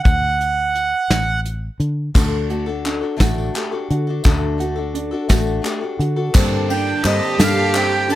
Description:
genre	indie folk with a building arrangement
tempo	57 BPM (dotted quarters)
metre	6/8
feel	straight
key	unclear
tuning	A4 = 441 Hz
part	accordion	melody	0.0-1.4, 6.7-8.2 s	Eb5 to A5	-19 LUFS	right 3 dB	slapback echo
part	fingered electric bass	bass	0.1-8.2 s	A1 to D3	-22 LUFS	equal	none
part	soft brush drum kit	drums	0.1-8.2 s	crash cymbal, hi-hat, kick drum, ride cymbal, snare drum	-18 LUFS	equal	none
part	picked old ladder-braced acoustic guitar	accompaniment	2.1-8.2 s	G2 to A4	-25 LUFS	left 7 dB	none
part	dark upright piano	arpeggios	2.1-8.2 s	C4 to G4	-26 LUFS	right 5 dB	none
part	group handclap	percussion	2.2-8.2 s	none	-27 LUFS	left 3 dB	none
part	tambourine	percussion	2.2-7.8 s	none	-35 LUFS	right 4 dB	none
part	felt-muted upright piano	accompaniment	6.3-8.2 s	G1 to F5	-30 LUFS	left 4 dB	none
part	dark studio string section	sustained chords	6.3-8.2 s	G4 to A5	-30 LUFS	left 3 dB	none
part	warm cello	second line	6.4-8.2 s	D4 to G4	-22 LUFS	right 4 dB	none
room	little or no reverb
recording	none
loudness	-16 LUFS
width	side -14 dB against mid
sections	0.0-2.2 A section; 2.2-6.4 B section; 6.4-8.2 C section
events	none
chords	0.0 D; 6.4 Gmadd9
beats	| 0.06 1.11 | 2.16 3.21 | 4.25 5.30 | 6.35 7.40

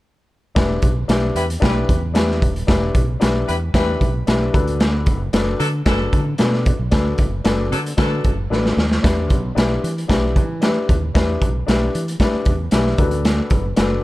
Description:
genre	uptempo 1960s-style soul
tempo	113 BPM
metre	4/4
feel	straight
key	E minor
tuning	A4 = 440 Hz
part	dark upright piano	accompaniment	0.6-14.0 s	D4 to B4	-23 LUFS	left 3 dB	none
part	fingered electric bass	bass	0.6-14.0 s	D#1 to E3	-22 LUFS	equal	none
part	raw garage drum kit	drums	0.6-13.9 s	hi-hat, kick drum, snare drum	-18 LUFS	equal	none
part	warm horn section	second line	1.4-8.4 s	F#3 to B4	-27 LUFS	left 1 dB	none
room	little or no reverb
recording	dark, warm production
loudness	-16 LUFS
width	side -17 dB against mid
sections	0.6-9.0 A section; 9.0-14.0 B section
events	drum fill 8.5-9.0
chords	0.6 Em7; 4.5 Bm7; 9.0 Em7; 13.0 Bm7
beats	| 0.57 1.09 1.62 2.15 | 2.68 3.21 3.74 4.27 | 4.80 5.33 5.86 6.39 | 6.92 7.45 7.98 8.51 | 9.04 9.56 10.09 10.62 | 11.15 11.67 12.20 12.72 | 13.25 13.78

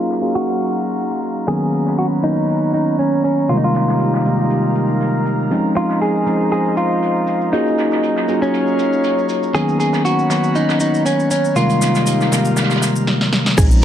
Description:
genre	deep house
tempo	119 BPM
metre	4/4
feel	swing 54% on 16ths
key	unclear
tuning	A4 = 440 Hz
part	direct-recorded clean electric guitar	melody	0.0-13.6 s	Db4 to Ab4	-20 LUFS	right 1 dB	tape echo
part	bell-like tine electric piano	stabs	0.0-13.8 s	C3 to F5	-18 LUFS	left 1 dB	sidechain pumping, low-pass filter
part	airy breathy pad	texture	0.0-13.8 s	Gb3 to C6	-24 LUFS	right 1 dB	chorus, sidechain pumping
part	loose indie drum kit	drums	0.1-13.8 s	hi-hat, snare drum	-29 LUFS	right 2 dB	high-pass filter on hats, low-pass filter on hats, high-pass filter on snare, low-pass filter on snare, high-pass filter on room, low-pass filter on room
part	cabasa	percussion	0.1-13.8 s	none	-30 LUFS	left 3 dB	none
part	punchy analog drum machine	drums	13.1-13.7 s	crash cymbal, hi-hat, snare drum	-18 LUFS	equal	none
part	woody FM bass	bass	13.6-13.8 s	Bb1	-14 LUFS	equal	tube saturation, sidechain pumping
part	electronic kick drum	drums	13.6-13.7 s	none	-13 LUFS	equal	none
room	light reverb, studio reverb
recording	low-pass filter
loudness	-14 LUFS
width	side -10 dB against mid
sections	0.0-13.6 A section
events	filter sweep 0.0-13.6; drum fill 13.1-13.6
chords	0.0 Ebm11; 1.5 Abm11; 3.5 Fm11; 5.5 Bbm11; 7.5 Ebm11; 9.5 Bmaj13/D#; 11.6 Fm11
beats	0.47 0.97 | 1.48 1.98 2.49 2.99 | 3.50 4.00 4.50 5.01 | 5.51 6.02 6.52 7.02 | 7.53 8.03 8.54 9.04 | 9.54 10.05 10.55 11.06 | 11.56 12.07 12.57 13.07 | 13.58

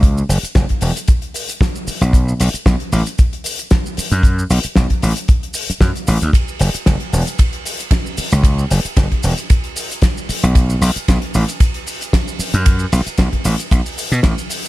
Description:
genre	nu-disco, nu disco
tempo	114 BPM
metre	4/4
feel	swing 53% on 16ths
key	unclear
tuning	A4 = 440 Hz
part	gritty slap bass	bass	0.0-14.3 s	E1 to B2	-15 LUFS	equal	overdrive
part	damped 70s drum kit	drums	0.0-14.7 s	hi-hat, ride cymbal, shaker, snare drum	-21 LUFS	left 1 dB	studio reverb
part	kick drum	drums	0.0-14.3 s	none	-13 LUFS	equal	studio reverb
room	little or no reverb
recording	none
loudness	-14 LUFS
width	side -17 dB against mid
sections	0.0-14.7 A section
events	none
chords	none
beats	| 0.03 0.55 1.08 1.61 | 2.13 2.66 3.19 3.71 | 4.24 4.76 5.29 5.82 | 6.34 6.87 7.40 7.92 | 8.45 8.97 9.50 10.03 | 10.55 11.08 11.61 12.13 | 12.66 13.19 13.71 14.24

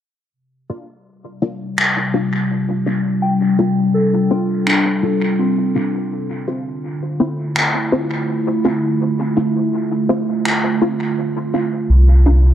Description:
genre	ambient dub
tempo	83 BPM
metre	4/4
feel	swing 59% on 16ths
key	unclear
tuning	A4 = 438 Hz
part	warbly tape-like pad	sustained chords	1.6-12.5 s	C3 to F4	-18 LUFS	equal	chorus, built-in reverb
part	filtered dub chord stab	stabs	0.7-12.4 s	Bb3 to F4	-22 LUFS	left 2 dB	phaser, ensemble chorus, dub echo
part	finger snaps	drums	1.8-10.6 s	none	-21 LUFS	equal	dub echo
part	soft synth bell	arpeggios	3.2-6.9 s	C4 to G5	-22 LUFS	right 1 dB	chorus, phaser, low-pass filter, analog delay
part	round analog bass	bass	11.9-12.5 s	C2	-9 LUFS	equal	none
room	moderate spring reverb, RT60 2.6 s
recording	echo-heavy mix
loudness	-15 LUFS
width	side -10 dB against mid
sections	0.3-12.5 A section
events	filter sweep on ambient pad 0.3-12.5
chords	0.3 C7sus4; 6.1 Dm7; 11.9 C7sus4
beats	| 0.33 1.06 1.78 2.50 | 3.23 3.95 4.67 5.39 | 6.12 6.84 7.56 8.29 | 9.01 9.73 10.45 11.18 | 11.90

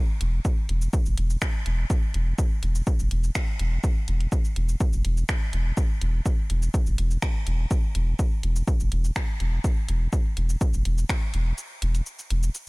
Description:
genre	dub techno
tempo	124 BPM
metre	4/4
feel	straight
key	unclear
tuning	A4 = 440 Hz
part	soft dub sub bass	bass	0.2-12.5 s	E1	-23 LUFS	equal	sidechain pumping
part	deep house drum kit	drums	0.2-12.6 s	finger snaps, hi-hat, shaker	-36 LUFS	equal	overdrive
part	electronic kick drum	drums	0.4-11.2 s	none	-24 LUFS	equal	none
room	digital ambience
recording	none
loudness	-22 LUFS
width	side -26 dB against mid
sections	0.0-12.7 A section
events	break 11.6-12.7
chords	none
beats	0.45 0.93 1.42 | 1.90 2.38 2.87 3.35 | 3.84 4.32 4.80 5.29 | 5.77 6.26 6.74 7.22 | 7.71 8.19 8.68 9.16 | 9.64 10.13 10.61 11.10 | 11.58 12.06 12.55

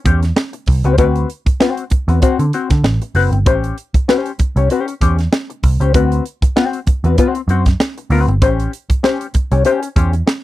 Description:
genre	funk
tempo	97 BPM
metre	4/4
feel	swing 56% on 16ths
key	unclear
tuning	A4 = 440 Hz
part	hollow-body jazz guitar	accompaniment	0.1-10.3 s	C4 to C#5	-17 LUFS	left 6 dB	wah
part	vintage muted picked electric bass	bass	0.1-10.2 s	F#1 to D3	-15 LUFS	right 1 dB	none
part	crisp fusion drum kit	drums	0.1-10.4 s	hi-hat, kick drum, snare drum	-15 LUFS	right 1 dB	none
room	little or no reverb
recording	dry, close 1970s-style studio recording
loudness	-13 LUFS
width	side -15 dB against mid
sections	0.0-10.4 A section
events	none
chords	0.0 A7#9 (rootless); 1.0 D13; 3.5 A7#9 (rootless); 5.9 D13; 8.4 A7#9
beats	0.37 | 0.99 1.61 2.23 2.85 | 3.47 4.09 4.71 5.33 | 5.94 6.56 7.18 7.80 | 8.42 9.03 9.65 10.27

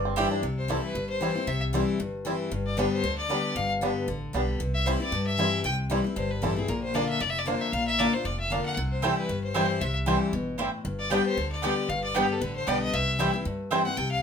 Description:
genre	bluegrass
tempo	230 BPM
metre	4/4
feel	swing 56% on 8ths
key	C major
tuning	A4 = 442 Hz
part	bluegrass banjo	melody	0.0-13.8 s	G3 to D5	-31 LUFS	right 4 dB	none
part	picked steel-string acoustic guitar	accompaniment	0.0-14.2 s	F2 to G4	-29 LUFS	left 3 dB	none
part	upright bass	bass	0.0-14.2 s	F1 to G2	-33 LUFS	equal	none
part	mandolin	stabs	0.2-0.3, 9.0-13.8 s	B3 to G5	-29 LUFS	right 4 dB	none
part	clear fiddle	melody	0.6-14.2 s	G4 to G5	-29 LUFS	left 2 dB	none
room	wet studio reverb, RT60 0.6 s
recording	minimal, uncompressed stereo recording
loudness	-25 LUFS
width	side -7 dB against mid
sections	0.4-14.2 A section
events	none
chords	0.4 C; 2.5 G; 4.6 C; 6.7 Bb; 8.8 C; 10.9 G; 12.9 C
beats	0.17 | 0.43 0.69 0.95 1.21 | 1.47 1.73 1.99 2.25 | 2.52 2.78 3.04 3.30 | 3.56 3.82 4.08 4.34 | 4.60 4.86 5.12 5.38 | 5.64 5.90 6.16 6.42 | 6.68 6.95 7.21 7.47 | 7.73 7.99 8.25 8.51 | 8.77 9.03 9.29 9.55 | 9.81 10.07 10.33 10.59 | 10.85 11.11 11.37 11.63 | 11.89 12.15 12.41 12.67 | 12.93 13.19 13.45 13.71 | 13.97

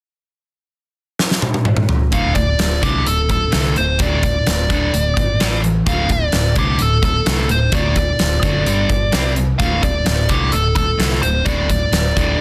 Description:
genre	hard rock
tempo	128 BPM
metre	4/4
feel	straight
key	unclear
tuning	A4 = 439 Hz
part	huge arena drum kit	drums	1.2-12.3 s	hi-hat, kick drum, snare drum, toms	-21 LUFS	equal	none
part	nasal lead guitar with a parked wah	melody	2.1-12.4 s	G4 to F5	-22 LUFS	equal	overdrive, slapback echo
part	crunchy overdriven guitar	riff	2.1-12.4 s	D2 to C4	-25 LUFS	equal	none
part	crunchy overdriven guitar	riff	2.1-12.4 s	D2 to C4	-27 LUFS	equal	none
part	fingered electric bass	bass	2.1-12.4 s	D1 to C2	-22 LUFS	equal	none
room	little or no reverb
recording	dense, heavily limited modern master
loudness	-17 LUFS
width	mono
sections	0.3-2.1 A section; 2.1-12.4 B section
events	drum fill 1.2-2.1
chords	0.3 N.C.; 2.1 D5; 5.4 A5; 5.9 D5; 8.7 G5; 9.1 C5; 9.6 D5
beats	| 0.27 0.73 1.20 1.67 | 2.13 2.60 3.07 3.53 | 4.00 4.47 4.93 5.40 | 5.87 6.33 6.80 7.27 | 7.74 8.20 8.67 9.14 | 9.60 10.07 10.54 11.01 | 11.47 11.94 12.41

